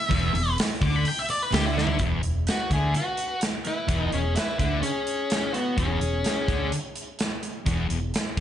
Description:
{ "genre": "blues rock power trio and southern rock", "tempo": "127 BPM", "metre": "4/4", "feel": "straight", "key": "E major", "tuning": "A4 = 441 Hz", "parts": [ { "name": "octave-fuzz lead guitar", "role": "melody", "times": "0.0-6.7 s", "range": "B3 to D6", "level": "-28 LUFS", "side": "left 1 dB", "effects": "distortion" }, { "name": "thick fuzz guitar", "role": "riff", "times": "0.1-8.4 s", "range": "E2 to D3", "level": "-28 LUFS", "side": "left 1 dB", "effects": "distortion" }, { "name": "vintage muted fingered electric bass", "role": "bass", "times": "0.1-8.4 s", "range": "E1 to D2", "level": "-28 LUFS", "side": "equal", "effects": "none" }, { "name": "big rock drum kit", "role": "drums", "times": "0.1-8.4 s", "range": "hi-hat, kick drum, snare drum, toms", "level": "-28 LUFS", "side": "right 1 dB", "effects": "none" }, { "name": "lead guitar through a small cranked amp", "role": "second line", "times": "2.5-6.7 s", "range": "F#4 to E5", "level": "-36 LUFS", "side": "right 4 dB", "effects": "overdrive, analog delay" } ], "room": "light reverb, small room ambience", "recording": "nothing above 10.7 kHz", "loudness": "-23 LUFS", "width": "side -10 dB against mid", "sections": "0.0-2.0 A section; 2.0-8.4 B section", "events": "lead electric guitar solo 0.0-2.0; drum fill 1.8", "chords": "0.0 N.C.; 2.0 E" }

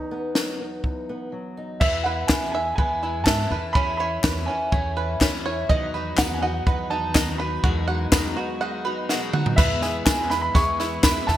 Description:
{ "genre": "indie folk with a building arrangement", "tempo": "124 BPM", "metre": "4/4", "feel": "straight", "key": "E major", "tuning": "A4 = 440 Hz", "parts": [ { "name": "dark upright piano", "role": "melody", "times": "0.0-11.4 s", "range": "D#4 to C#6", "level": "-27 LUFS", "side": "right 2 dB", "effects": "none" }, { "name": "fingerpicked old ladder-braced acoustic guitar", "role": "accompaniment", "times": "0.0-3.8 s", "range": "E2 to D#4", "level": "-35 LUFS", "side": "left 2 dB", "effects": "lush chorus" }, { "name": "compact cocktail drum kit", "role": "drums", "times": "0.4-11.3 s", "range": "crash cymbal, kick drum, snare drum, toms", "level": "-22 LUFS", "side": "equal", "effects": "gated reverb" }, { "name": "picked acoustic archtop guitar", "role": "accompaniment", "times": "1.8-11.4 s", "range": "E2 to F#4", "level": "-31 LUFS", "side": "left 5 dB", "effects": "analog chorus" }, { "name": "bluegrass banjo", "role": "arpeggios", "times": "1.8-11.4 s", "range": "C#4 to F#5", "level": "-30 LUFS", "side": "right 5 dB", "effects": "none" }, { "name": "upright bass", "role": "bass", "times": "1.8-11.4 s", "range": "D#2 to G#2", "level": "-29 LUFS", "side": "equal", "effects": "none" }, { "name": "group handclap", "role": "percussion", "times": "2.3-11.1 s", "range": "none", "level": "-30 LUFS", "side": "left 6 dB", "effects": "none" }, { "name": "warm grand piano", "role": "accompaniment", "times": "5.7-11.4 s", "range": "E2 to E5", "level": "-36 LUFS", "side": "equal", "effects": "analog chorus" }, { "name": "mellow tonewheel organ", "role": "sustained chords", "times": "5.7-11.4 s", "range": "C#3 to B3", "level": "-36 LUFS", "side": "right 2 dB", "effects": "slow rotary speaker" }, { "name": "tambourine", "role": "percussion", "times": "6.2-11.1 s", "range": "none", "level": "-34 LUFS", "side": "right 5 dB", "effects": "none" } ], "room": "moderate plate reverb, RT60 2.0 s", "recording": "bright 1980s-style digital production", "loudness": "-20 LUFS", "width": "side -12 dB against mid", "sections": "0.0-1.8 A section; 1.8-9.6 B section; 9.6-11.4 C section", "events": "break 1.3-1.8, 8.6-9.6; drum fill 9.1-9.6", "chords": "0.0 B/E; 1.8 E; 3.5 Aadd9/E; 5.7 B/E; 7.6 G#m7/E; 9.6 E" }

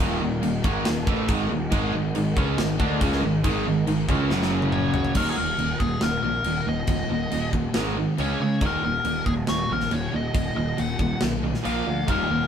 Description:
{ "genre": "hard rock", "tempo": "139 BPM", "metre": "4/4", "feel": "straight", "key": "Eb minor", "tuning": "A4 = 440 Hz", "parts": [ { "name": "warm analog pad", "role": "sustained chords", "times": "0.0-5.2, 12.1-12.5 s", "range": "Gb3 to F5", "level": "-37 LUFS", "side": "equal", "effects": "chorus" }, { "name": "cranked stack guitar", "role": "riff", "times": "0.0-12.5 s", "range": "Eb2 to D4", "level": "-27 LUFS", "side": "right 5 dB", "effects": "overdrive" }, { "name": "tight distorted guitar", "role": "riff", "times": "0.0-12.5 s", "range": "Eb2 to D4", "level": "-30 LUFS", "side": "left 5 dB", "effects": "distortion" }, { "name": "fuzz picked electric bass", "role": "bass", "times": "0.0-12.5 s", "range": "Eb1 to Db3", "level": "-29 LUFS", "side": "equal", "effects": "overdrive" }, { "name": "tight metal drum kit", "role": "drums", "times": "0.4-12.2 s", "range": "crash cymbal, kick drum, snare drum, toms", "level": "-28 LUFS", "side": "left 1 dB", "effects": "none" }, { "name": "distorted electric guitar", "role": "riff", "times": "1.7-5.2, 12.1-12.5 s", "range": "Eb2 to D4", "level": "-29 LUFS", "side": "left 1 dB", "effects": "distortion" }, { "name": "nasal lead guitar with a parked wah", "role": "melody", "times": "4.7-12.5 s", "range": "Gb4 to Gb5", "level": "-28 LUFS", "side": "left 2 dB", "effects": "overdrive" } ], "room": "moderate studio reverb, RT60 0.8 s", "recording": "band playing live in one room", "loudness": "-21 LUFS", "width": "side -8 dB against mid", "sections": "0.0-5.2 A section; 5.2-12.5 B section", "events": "drum fill 4.3-5.2", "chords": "0.0 Eb5; 1.7 Ab5; 4.3 Gb5; 5.2 Eb5; 7.8 Ab5; 8.2 Db5; 8.6 Ebm; 11.7 Bb5" }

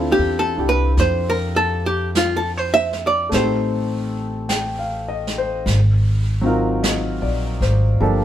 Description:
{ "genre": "jazz ballad", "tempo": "51 BPM", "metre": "4/4", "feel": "swing 66% on 8ths", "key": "unclear", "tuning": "A4 = 438 Hz", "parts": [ { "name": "warm concert grand piano", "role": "accompaniment", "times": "0.0-8.2 s", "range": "F3 to G5", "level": "-23 LUFS", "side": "left 1 dB", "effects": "none" }, { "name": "upright bass", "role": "bass", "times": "0.0-8.2 s", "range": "G1 to F2", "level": "-21 LUFS", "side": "equal", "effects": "none" }, { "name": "archtop guitar, miked and amplified", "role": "melody", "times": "0.1-5.6 s", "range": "F4 to E5", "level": "-19 LUFS", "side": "right 1 dB", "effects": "none" }, { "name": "jazz brush drum kit", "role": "drums", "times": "1.0-8.2 s", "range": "brushed snare drum, hi-hat, snare drum", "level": "-28 LUFS", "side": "right 2 dB", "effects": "none" } ], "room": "light reverb", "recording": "band playing live in one room", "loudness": "-17 LUFS", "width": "side -11 dB against mid", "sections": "0.0-8.2 A section", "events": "hollow-body jazz guitar solo 0.0-8.2", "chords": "0.0 Dm9; 3.3 Am7b5; 5.7 Ab13" }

